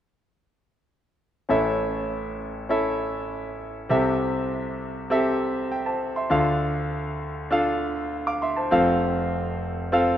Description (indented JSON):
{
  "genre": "pop",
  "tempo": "100 BPM",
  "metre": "4/4",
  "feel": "straight",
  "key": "unclear",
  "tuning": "A4 = 440 Hz",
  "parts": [
    { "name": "clear concert grand piano", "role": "accompaniment", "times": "1.5-10.2 s", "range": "F1 to D6", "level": "-22 LUFS", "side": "equal", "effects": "none" }
  ],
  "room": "moderate plate reverb, RT60 3.6 s",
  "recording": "rough home demo mix",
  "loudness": "-22 LUFS",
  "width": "side -10 dB against mid",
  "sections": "1.5-10.2 A section",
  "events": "none",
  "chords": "1.5 A; 3.9 C6; 6.3 Dm; 8.7 F"
}